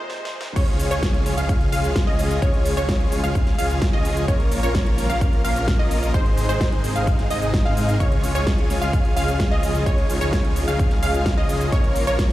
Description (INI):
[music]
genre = EDM, festival progressive house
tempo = 129 BPM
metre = 4/4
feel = straight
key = Db major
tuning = A4 = 440 Hz
[part]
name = dark baby grand piano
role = accompaniment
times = 0.0-0.6 s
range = Bb2 to Bb4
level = -45 LUFS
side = right 2 dB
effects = none
[part]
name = lush unison pad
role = sustained chords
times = 0.0-12.3 s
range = C3 to C5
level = -32 LUFS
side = equal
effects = none
[part]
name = big-room dance drum kit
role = drums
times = 0.1-12.3 s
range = crash cymbal, hi-hat, shaker, snare drum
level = -30 LUFS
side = equal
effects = high-pass filter on snare, high-pass filter on hats, high-pass filter on perc, high-pass filter on cymbals, high-pass filter on room
[part]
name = wide unison pluck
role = arpeggios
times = 0.6-12.3 s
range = C5 to F5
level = -28 LUFS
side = equal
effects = sidechain pumping, digital delay
[part]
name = big supersaw lead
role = riff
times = 0.6-12.3 s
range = Ab3 to F5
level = -26 LUFS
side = equal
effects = sidechain pumping, digital delay
[part]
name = detuned saw bass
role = bass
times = 0.6-12.3 s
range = Ab1 to Ab2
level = -25 LUFS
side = equal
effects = sidechain pumping
[part]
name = electronic kick drum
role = drums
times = 0.6-12.3 s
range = none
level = -20 LUFS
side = equal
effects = none
[sound]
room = light reverb, digital ambience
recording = played on a big sound system in a bare room, large studio reverb, high-pass filter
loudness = -18 LUFS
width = side -15 dB against mid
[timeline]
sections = 0.6-12.3 A section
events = break 0.0-0.6; drum fill 0.1-0.6; drop 0.6-12.3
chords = 0.0 Ab; 0.6 Db; 4.3 Bbm; 6.1 Ab; 8.0 Db; 11.7 Bbm